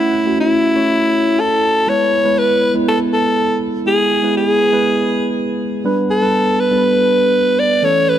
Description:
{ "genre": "pop", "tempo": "121 BPM", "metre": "4/4", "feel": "straight", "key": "unclear", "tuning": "A4 = 440 Hz", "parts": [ { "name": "raspy alto saxophone", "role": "melody", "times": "0.0-8.2 s", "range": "E4 to D5", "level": "-14 LUFS", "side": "equal", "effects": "digital delay" }, { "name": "mellow tine electric piano", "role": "accompaniment", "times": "0.0-8.2 s", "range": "E3 to C#5", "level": "-17 LUFS", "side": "right 1 dB", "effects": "lush chorus" } ], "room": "moderate lush hall reverb, RT60 2.8 s", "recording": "none", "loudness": "-13 LUFS", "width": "side -10 dB against mid", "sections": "0.0-8.2 A section", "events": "none", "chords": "0.0 A; 1.9 E; 5.8 G", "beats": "0.39 0.89 1.38 | 1.88 2.37 2.87 3.37 | 3.86 4.36 4.85 5.35 | 5.84 6.34 6.84 7.33 | 7.83" }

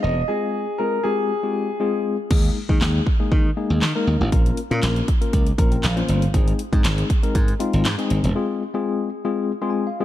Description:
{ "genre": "dance-pop", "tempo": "119 BPM", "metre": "4/4", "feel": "straight", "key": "unclear", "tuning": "A4 = 437 Hz", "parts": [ { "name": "warm concert grand piano", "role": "melody", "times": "0.0-2.0 s", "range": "Ab4 to Eb5", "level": "-24 LUFS", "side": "left 1 dB", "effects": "ping-pong delay" }, { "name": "tine electric piano", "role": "accompaniment", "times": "0.0-10.0 s", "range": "Ab3 to C6", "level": "-24 LUFS", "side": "left 4 dB", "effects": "medium tremolo, sidechain pumping" }, { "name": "glassy slap bass", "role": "bass", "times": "0.0-8.3 s", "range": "E1 to Eb3", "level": "-21 LUFS", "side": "equal", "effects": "sidechain pumping" }, { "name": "pop drum kit", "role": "drums", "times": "2.3-8.3 s", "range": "crash cymbal, handclaps, hi-hat, kick drum, snare drum", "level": "-20 LUFS", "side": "equal", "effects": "none" } ], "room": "light reverb", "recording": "dark, warm production", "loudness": "-18 LUFS", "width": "side -13 dB against mid", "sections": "0.0-2.3 A section; 2.3-10.0 B section", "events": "tine electric piano fill 5.3-6.3, 9.4-10.0; break 8.4-10.0", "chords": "0.3 Fm; 2.3 Ebsus4; 4.3 Bbm; 6.3 Ab; 8.4 Fm", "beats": "| 0.29 0.79 1.30 1.80 | 2.31 2.81 3.31 3.82 | 4.32 4.83 5.33 5.84 | 6.34 6.84 7.35 7.85 | 8.36 8.86 9.37 9.87" }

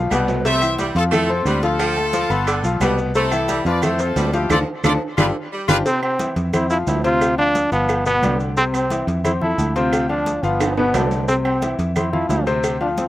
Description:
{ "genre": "latin, salsa", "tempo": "177 BPM", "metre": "4/4", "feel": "straight", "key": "C major", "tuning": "A4 = 439 Hz", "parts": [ { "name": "clear concert grand piano", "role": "accompaniment", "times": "0.0-13.1 s", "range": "B2 to C6", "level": "-22 LUFS", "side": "left 3 dB", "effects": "none" }, { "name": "fingered electric bass", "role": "bass", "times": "0.0-13.1 s", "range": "G1 to F2", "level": "-23 LUFS", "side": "right 1 dB", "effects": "none" }, { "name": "clear saxophone section", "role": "second line", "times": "0.1-5.7 s", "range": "D3 to A3", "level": "-25 LUFS", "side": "right 2 dB", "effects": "none" }, { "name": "agogo bells and timbales", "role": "percussion", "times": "0.1-13.0 s", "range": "none", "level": "-29 LUFS", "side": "right 4 dB", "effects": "none" }, { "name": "claves", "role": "percussion", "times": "0.1-12.8 s", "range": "none", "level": "-31 LUFS", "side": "right 7 dB", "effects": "slapback echo" }, { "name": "congas", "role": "percussion", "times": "0.1-13.1 s", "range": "none", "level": "-28 LUFS", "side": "equal", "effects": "none" }, { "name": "cowbell", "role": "percussion", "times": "0.1-13.1 s", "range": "none", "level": "-29 LUFS", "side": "left 1 dB", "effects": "slapback echo" }, { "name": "maracas", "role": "percussion", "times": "0.1-13.1 s", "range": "none", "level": "-37 LUFS", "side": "right 6 dB", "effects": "none" }, { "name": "bright horn section", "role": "melody", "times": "0.5-5.8 s", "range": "E4 to E5", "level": "-22 LUFS", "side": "equal", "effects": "slapback echo" }, { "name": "bright trombone", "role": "melody", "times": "5.9-13.1 s", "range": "B3 to F4", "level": "-20 LUFS", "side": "right 1 dB", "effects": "none" } ], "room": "little or no reverb", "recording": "recorded outdoors, with no room sound", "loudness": "-16 LUFS", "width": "side -14 dB against mid", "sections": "0.0-5.9 A section; 5.9-13.1 B section", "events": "drum fill 0.0-0.5, 4.8-5.9, 10.6-11.3; band accent 4.5-5.9", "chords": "0.5 C6; 1.1 Fmaj7; 1.8 Dm; 2.5 G7; 3.2 C6; 3.8 Fmaj7; 4.5 Dm7; 5.2 G7(no3); 5.9 C; 6.5 F5; 7.2 Dm7; 7.9 G7; 8.6 C; 9.2 Fmaj7; 9.9 Dm7; 10.6 G7; 11.3 C; 12.0 F5", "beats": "0.12 | 0.45 0.79 1.13 1.46 | 1.80 2.14 2.48 2.81 | 3.15 3.49 3.83 4.17 | 4.50 4.84 5.18 5.52 | 5.86 6.20 6.54 6.87 | 7.21 7.55 7.89 8.23 | 8.57 8.91 9.25 9.59 | 9.93 10.27 10.61 10.94 | 11.28 11.62 11.96 12.30 | 12.64 12.97" }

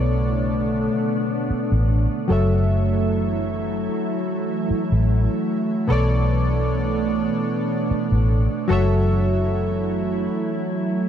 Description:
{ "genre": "contemporary R&B", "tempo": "75 BPM", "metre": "4/4", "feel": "swing 54% on 16ths", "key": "B minor", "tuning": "A4 = 440 Hz", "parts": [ { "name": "warm analog keys", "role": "accompaniment", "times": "0.0-11.1 s", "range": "B2 to E5", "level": "-24 LUFS", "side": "left 1 dB", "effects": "chorus" }, { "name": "glassy FM pad", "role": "sustained chords", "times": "0.0-11.1 s", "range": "D3 to E4", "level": "-24 LUFS", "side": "right 2 dB", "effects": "ensemble chorus, built-in reverb" }, { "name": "vintage muted fingered electric bass", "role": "bass", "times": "0.0-10.3 s", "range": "F#1 to B1", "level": "-20 LUFS", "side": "equal", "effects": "none" } ], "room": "light reverb", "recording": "dark, warm production", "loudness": "-19 LUFS", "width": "side -9 dB against mid", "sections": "0.0-11.1 A section", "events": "none", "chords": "0.0 Bm9; 2.3 F#m7; 5.9 Bm9; 8.7 F#m7", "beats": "0.30 1.10 1.90 | 2.70 3.50 4.30 5.10 | 5.90 6.70 7.50 8.30 | 9.10 9.90 10.70" }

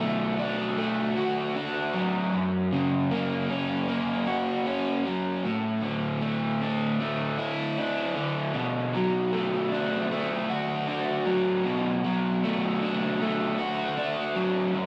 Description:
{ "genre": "rock", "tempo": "77 BPM", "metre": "4/4", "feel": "straight", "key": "B minor", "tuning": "A4 = 440 Hz", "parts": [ { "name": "raw garage guitar", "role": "solo", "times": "0.0-14.9 s", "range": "F#2 to F#4", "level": "-27 LUFS", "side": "equal", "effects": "overdrive, subtle chorus, analog delay" } ], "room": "wet plate reverb, RT60 2.6 s", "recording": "dreamy mix soaked in reverb", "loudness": "-27 LUFS", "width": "mono", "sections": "0.0-14.9 A section", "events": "none", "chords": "0.0 Bm7; 2.3 F#; 5.4 Asus4; 8.6 Bm7", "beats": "0.00 0.78 1.56 | 2.33 3.11 3.89 4.67 | 5.45 6.22 7.00 7.78 | 8.56 9.33 10.11 10.88 | 11.66 12.43 13.20 13.97 | 14.74" }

